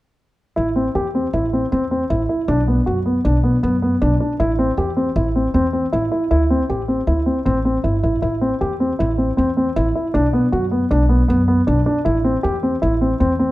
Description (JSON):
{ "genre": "contemporary instrumental, chamber music in an uneven meter", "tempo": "157 BPM", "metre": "5/4", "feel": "straight", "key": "A dorian", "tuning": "A4 = 440 Hz", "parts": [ { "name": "dark baby grand piano", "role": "arpeggios", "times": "0.6-13.5 s", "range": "B3 to G4", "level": "-18 LUFS", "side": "equal", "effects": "none" }, { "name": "upright bass", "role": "bass", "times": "0.6-13.5 s", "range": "G1 to F#2", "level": "-20 LUFS", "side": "equal", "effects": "none" } ], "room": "moderate recital hall reverb, RT60 1.4 s", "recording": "dark, warm production", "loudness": "-16 LUFS", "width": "side -17 dB against mid", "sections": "0.6-13.5 A section", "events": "none", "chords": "0.6 Am; 2.5 Bm; 4.4 Am; 6.3 D9sus4; 8.2 Am; 10.1 Bm; 12.1 Am" }